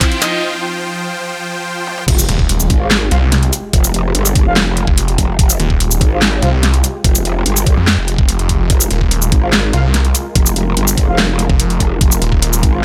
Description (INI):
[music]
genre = heavy wobble dubstep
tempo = 145 BPM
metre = 4/4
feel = half-time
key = F minor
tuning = A4 = 440 Hz
[part]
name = supersaw chords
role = sustained chords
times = 0.0-12.8 s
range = F3 to G5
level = -27 LUFS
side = equal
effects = sidechain pumping, low-pass filter
[part]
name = dubstep drum kit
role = drums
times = 0.0-12.7 s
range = crash cymbal, handclaps, hi-hat, shaker, snare drum, toms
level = -18 LUFS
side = equal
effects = high-pass filter on snare, high-pass filter on hats, high-pass filter on perc, high-pass filter on toms, high-pass filter on cymbals
[part]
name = electronic kick drum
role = drums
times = 0.0-12.7 s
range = none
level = -15 LUFS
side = equal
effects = none
[part]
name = riser and impact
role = sound effects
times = 0.0-3.7 s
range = none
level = -27 LUFS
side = equal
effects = none
[part]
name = growl bass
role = bass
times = 2.1-12.8 s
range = F1 to Ab1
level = -19 LUFS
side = equal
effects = chorus, overdrive
[part]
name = snarling distorted saw bass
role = bass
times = 2.3-12.6 s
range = Eb1 to F2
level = -17 LUFS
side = equal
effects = distortion, overdrive
[part]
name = mellow brass ensemble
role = stabs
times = 2.8-6.5, 9.4-12.8 s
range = F4 to F5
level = -25 LUFS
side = equal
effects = tape echo
[sound]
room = little or no reverb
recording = none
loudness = -14 LUFS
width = mono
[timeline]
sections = 0.0-2.1 A section; 2.1-12.8 B section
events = build-up 0.0-2.1; drum fill 0.0-0.4, 1.9; riser 0.0-0.4; break 0.4-2.1; drop 2.1-12.8; impact 2.1-3.7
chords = 0.0 Fsus2; 2.1 Fmadd9